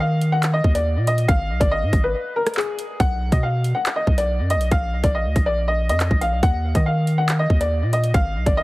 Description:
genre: hip hop, drill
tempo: 140 BPM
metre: 4/4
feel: half-time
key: Eb harmonic minor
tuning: A4 = 441 Hz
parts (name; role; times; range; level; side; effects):
- clear upright piano; melody; 0.0-8.6 s; Ab4 to Gb5; -22 LUFS; left 1 dB; digital delay
- long sustained 808-style bass; bass; 0.0-8.6 s; Ab1 to Eb3; -21 LUFS; equal; none
- drill drum kit; drums; 0.2-8.6 s; handclaps, hi-hat, kick drum, rim click; -20 LUFS; equal; none
room: digital ambience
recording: heavily compressed radio sound, multiband compression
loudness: -18 LUFS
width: side -20 dB against mid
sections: 0.0-3.0 A section; 3.0-8.6 B section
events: break 2.1-3.0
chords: 0.0 Eb5; 1.3 N.C.; 3.0 B5; 4.7 Bb5; 6.4 Eb5

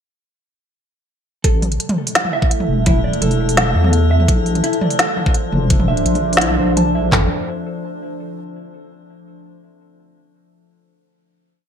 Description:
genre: half-time drum and bass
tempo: 169 BPM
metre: 4/4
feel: half-time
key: A phrygian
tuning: A4 = 440 Hz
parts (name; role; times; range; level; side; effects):
- deep dark ambient pad; sustained chords; 2.3-7.3 s; F3 to C5; -24 LUFS; equal; chorus, built-in reverb, sidechain pumping
- mellow electric guitar; arpeggios; 1.4-7.3 s; E4 to A5; -24 LUFS; right 2 dB; ping-pong delay
- deep soft wobble bass; bass; 1.4-7.3 s; E1 to E2; -17 LUFS; equal; chorus
- drum and bass drum kit; drums; 1.4-7.2 s; handclaps, kick drum, toms; -16 LUFS; equal; studio ambience, gated reverb
- organic electronic drum kit; drums; 1.4-6.8 s; hi-hat, snare drum, toms; -19 LUFS; equal; studio ambience, gated reverb
- metallic inharmonic drone; texture; 2.4-7.1 s; A3 to A4; -29 LUFS; left 4 dB; chorus, built-in reverb
room: light reverb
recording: bright 1980s-style digital production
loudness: -14 LUFS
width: side -8 dB against mid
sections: 1.4-7.1 drop; 7.1-8.5 final chord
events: drop 1.4-7.1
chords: 1.4 A5; 4.3 Bb; 7.1 A5

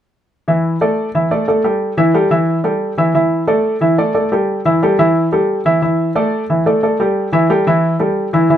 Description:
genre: latin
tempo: 179 BPM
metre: 4/4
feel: straight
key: unclear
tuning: A4 = 439 Hz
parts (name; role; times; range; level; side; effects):
- warm baby grand piano; solo; 0.5-8.6 s; E3 to E5; -12 LUFS; equal; none
room: light reverb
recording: dark, warm production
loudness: -13 LUFS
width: side -10 dB against mid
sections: 0.5-8.6 A section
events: none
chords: 0.5 Dsus2; 1.8 A5; 3.1 Dsus2; 4.5 A5; 5.8 Dsus2; 7.2 A5

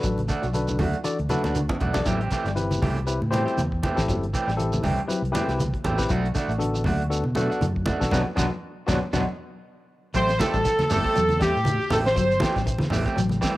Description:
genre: afrobeat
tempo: 119 BPM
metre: 4/4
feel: swing 56% on 16ths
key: A dorian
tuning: A4 = 440 Hz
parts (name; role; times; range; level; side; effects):
- barky tine electric piano; accompaniment; 0.0-9.2 s; B3 to D5; -29 LUFS; left 2 dB; cassette tape, plate reverb
- semi-hollow electric guitar; arpeggios; 0.0-13.6 s; B2 to A3; -30 LUFS; left 3 dB; lush chorus, cassette tape, plate reverb
- fingered electric bass; bass; 0.0-13.4 s; G1 to B2; -27 LUFS; equal; none
- damped 70s drum kit; drums; 0.0-13.6 s; hi-hat, kick drum, snare drum; -30 LUFS; equal; none
- shekere; percussion; 0.0-13.6 s; none; -34 LUFS; right 3 dB; none
- congas; percussion; 0.2-13.4 s; none; -29 LUFS; right 1 dB; none
- electric guitar at the edge of break-up; stabs; 0.3-13.6 s; E3 to G4; -30 LUFS; right 3 dB; cassette tape, plate reverb
- clear horn section; melody; 10.2-12.5 s; G4 to C5; -24 LUFS; equal; plate reverb, tape echo
- raspy alto saxophone; second line; 10.2-12.5 s; G4 to C5; -28 LUFS; right 2 dB; cassette tape, plate reverb
room: moderate studio reverb, RT60 0.6 s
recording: home recording on cassette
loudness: -21 LUFS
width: side -17 dB against mid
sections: 0.0-10.1 A section; 10.1-13.6 B section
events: drum fill 1.3-2.1, 9.4-10.1; band accent 8.1-10.1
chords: 0.0 Bm7; 2.1 Am7; 6.1 Bm7; 10.1 Am7

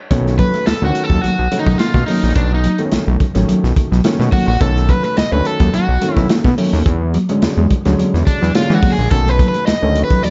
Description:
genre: funk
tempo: 107 BPM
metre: 4/4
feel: straight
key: B mixolydian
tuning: A4 = 439 Hz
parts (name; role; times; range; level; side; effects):
- dark upright piano; stabs; 0.1-10.3 s; C#3 to C#4; -24 LUFS; equal; none
- fat analog bass; bass; 0.1-10.3 s; A1 to E3; -18 LUFS; equal; none
- crunchy breakbeat drum kit; drums; 0.1-10.3 s; hi-hat, kick drum, snare drum; -20 LUFS; equal; none
- congas; percussion; 0.1-10.3 s; none; -28 LUFS; equal; none
- electric guitar at the edge of break-up; riff; 0.3-10.3 s; F#3 to A3; -22 LUFS; equal; spring reverb
- overdriven semi-hollow guitar; accompaniment; 0.4-10.3 s; D4 to D#5; -22 LUFS; equal; spring reverb
room: little or no reverb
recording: dark, warm production, nothing above 7.7 kHz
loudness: -15 LUFS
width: mono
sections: 0.1-10.3 A section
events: overdriven electric guitar solo 0.1-10.3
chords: 0.1 B9; 6.9 E13; 9.1 B9

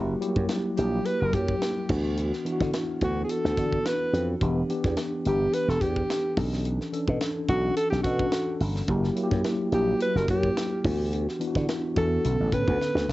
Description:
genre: polished 1980s jazz-funk pop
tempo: 107 BPM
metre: 4/4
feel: swing 54% on 16ths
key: B minor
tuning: A4 = 441 Hz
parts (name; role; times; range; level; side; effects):
- mellow tine electric piano; accompaniment; 0.0-13.1 s; D3 to A4; -28 LUFS; left 1 dB; medium stereo tremolo, wide subtle chorus
- slap bass with an envelope filter; bass; 0.0-13.1 s; E1 to D3; -27 LUFS; equal; none
- tight funk drum kit; drums; 0.2-13.1 s; crash cymbal, hi-hat, kick drum, snare drum; -32 LUFS; equal; none
- breathy alto saxophone; melody; 0.8-13.1 s; F#4 to B4; -29 LUFS; right 1 dB; cassette tape, plate reverb, analog delay
room: light reverb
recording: home recording on cassette, nothing above 7.9 kHz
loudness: -24 LUFS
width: side -17 dB against mid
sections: 0.0-13.1 A section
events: drum fill 12.8-13.1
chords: 0.0 F#7b9; 1.9 D69; 4.4 Em7; 6.4 Bm11; 8.9 F#7b9; 10.8 D69; 12.2 Bm9

